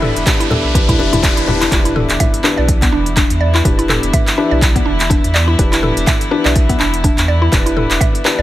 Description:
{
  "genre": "afro house",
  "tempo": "124 BPM",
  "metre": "4/4",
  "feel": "swing 57% on 16ths",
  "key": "E minor",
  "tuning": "A4 = 440 Hz",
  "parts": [
    { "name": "dark studio string section", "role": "sustained chords", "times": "0.0-8.4 s", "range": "E3 to E4", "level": "-23 LUFS", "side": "equal", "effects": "sidechain pumping" },
    { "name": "mallet-like synth pluck", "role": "arpeggios", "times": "0.0-8.4 s", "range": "B3 to E5", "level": "-20 LUFS", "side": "equal", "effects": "chorus, sidechain pumping, tape echo" },
    { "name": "felt-muted upright piano", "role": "stabs", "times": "0.0-8.4 s", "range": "D4 to B4", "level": "-20 LUFS", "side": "left 4 dB", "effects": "sidechain pumping, tape echo" },
    { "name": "warm sub bass", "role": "bass", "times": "0.0-8.4 s", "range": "E1 to E2", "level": "-18 LUFS", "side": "equal", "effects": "sidechain pumping" },
    { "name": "deep house drum kit", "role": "drums", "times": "0.0-8.4 s", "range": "handclaps, hi-hat, toms", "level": "-18 LUFS", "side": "equal", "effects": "none" },
    { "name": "riser and impact", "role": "sound effects", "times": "0.0-3.7 s", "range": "none", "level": "-23 LUFS", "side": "equal", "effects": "none" },
    { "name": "congas", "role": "percussion", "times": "0.2-1.7 s", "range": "none", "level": "-20 LUFS", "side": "equal", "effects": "none" },
    { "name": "electronic kick drum", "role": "drums", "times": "0.3-8.1 s", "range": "none", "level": "-15 LUFS", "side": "equal", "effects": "none" }
  ],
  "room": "light reverb, digital ambience",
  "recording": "none",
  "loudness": "-11 LUFS",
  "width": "side -14 dB against mid",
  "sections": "0.0-1.7 A section; 1.7-8.4 B section",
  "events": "build-up 0.0-1.7; riser 0.0-1.7; drop 1.7-8.4; impact 1.7-3.7",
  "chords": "0.0 Em7"
}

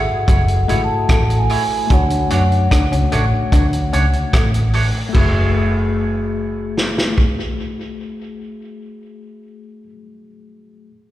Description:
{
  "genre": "lovers rock reggae",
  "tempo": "74 BPM",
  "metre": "4/4",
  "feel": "straight",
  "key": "F# minor",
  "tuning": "A4 = 441 Hz",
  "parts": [
    { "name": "vibraphone with soft mallets", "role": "melody", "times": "0.0-4.3 s", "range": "F#5 to A5", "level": "-23 LUFS", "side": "equal", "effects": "tape echo, slapback echo" },
    { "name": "tine electric piano", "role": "accompaniment", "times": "0.0-10.9 s", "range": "A3 to E5", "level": "-25 LUFS", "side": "left 4 dB", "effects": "overdrive, auto-pan, tape echo, slapback echo" },
    { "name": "vintage muted fingered electric bass", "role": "bass", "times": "0.0-9.9 s", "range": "F#1 to F#2", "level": "-18 LUFS", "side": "equal", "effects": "none" },
    { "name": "electric guitar through a small old amp", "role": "riff", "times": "0.3-4.6 s", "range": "F#3 to F#4", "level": "-27 LUFS", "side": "left 4 dB", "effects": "none" },
    { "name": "vintage drum kit", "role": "drums", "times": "0.3-7.4 s", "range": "crash cymbal, hi-hat, kick drum, rim click, snare drum", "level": "-18 LUFS", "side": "equal", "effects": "tape echo" },
    { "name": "twangy electric guitar", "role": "stabs", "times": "0.7-9.9 s", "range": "A3 to C#5", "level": "-26 LUFS", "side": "right 4 dB", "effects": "tape echo, slapback echo" }
  ],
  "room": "light reverb, small room ambience",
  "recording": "live gig heard through the venue's PA, recital hall reverb",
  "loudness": "-14 LUFS",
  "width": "side -14 dB against mid",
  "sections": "0.0-5.1 A section; 5.1-8.4 B section",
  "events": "none",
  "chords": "0.0 F#m9; 1.9 Dmaj7; 5.1 F#m9"
}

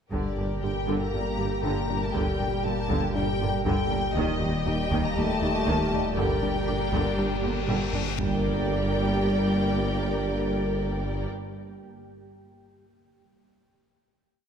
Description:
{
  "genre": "cinematic, hybrid orchestral and electronic film score",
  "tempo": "119 BPM",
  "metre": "4/4",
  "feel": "straight",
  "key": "G minor",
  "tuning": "A4 = 439 Hz",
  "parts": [
    { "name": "warm symphonic violin section", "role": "melody", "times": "0.1-11.3 s", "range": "D5 to Bb5", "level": "-34 LUFS", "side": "left 4 dB", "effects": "none" },
    { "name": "warm symphonic violin section", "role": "second line", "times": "0.1-11.3 s", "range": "G4 to Eb5", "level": "-34 LUFS", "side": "left 4 dB", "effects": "none" },
    { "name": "warm symphonic viola section", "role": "accompaniment", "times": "0.1-11.3 s", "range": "D3 to G4", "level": "-33 LUFS", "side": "right 1 dB", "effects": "none" },
    { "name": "clear trombone section", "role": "sustained chords", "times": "0.1-11.3 s", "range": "Bb2 to Bb3", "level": "-35 LUFS", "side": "right 3 dB", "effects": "none" },
    { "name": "glassy FM pad", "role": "sustained chords", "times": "0.5-11.3 s", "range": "Bb2 to G5", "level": "-35 LUFS", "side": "equal", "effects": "none" },
    { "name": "warm French horn section", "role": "sustained chords", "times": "0.1-11.3 s", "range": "D3 to Bb3", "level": "-35 LUFS", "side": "left 2 dB", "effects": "none" },
    { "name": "tight sequenced synth", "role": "arpeggios", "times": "0.1-8.1 s", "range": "Eb3 to G4", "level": "-36 LUFS", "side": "left 3 dB", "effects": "none" },
    { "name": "mellow tuba", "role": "bass", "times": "0.1-11.3 s", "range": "G1 to Eb2", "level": "-34 LUFS", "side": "right 3 dB", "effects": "none" },
    { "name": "rich symphonic cello section", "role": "bass", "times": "0.1-11.3 s", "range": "Eb2 to G2", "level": "-34 LUFS", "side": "right 3 dB", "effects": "none" },
    { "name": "sub bass with octave", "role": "bass", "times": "0.1-11.3 s", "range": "Eb1 to G1", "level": "-34 LUFS", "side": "equal", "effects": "none" },
    { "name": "warm symphonic double bass section", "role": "bass", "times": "0.1-11.3 s", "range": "G1 to Eb2", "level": "-36 LUFS", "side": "right 3 dB", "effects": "none" },
    { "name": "taiko ensemble", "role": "drums", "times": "0.1-8.3 s", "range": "none", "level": "-34 LUFS", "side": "equal", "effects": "none" },
    { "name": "reverse cymbal and impact", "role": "sound effects", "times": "6.6-10.2 s", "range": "none", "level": "-37 LUFS", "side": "left 2 dB", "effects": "none" }
  ],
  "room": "moderate concert hall reverb, RT60 2.4 s",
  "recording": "none",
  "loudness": "-24 LUFS",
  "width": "side -7 dB against mid",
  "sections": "0.1-8.2 theme; 8.2-12.2 final chord",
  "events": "reverse cymbal 6.6-8.2; drum fill 7.4-8.2; impact 8.2-10.2",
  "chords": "0.1 Gm; 4.2 Eb; 6.2 Gm"
}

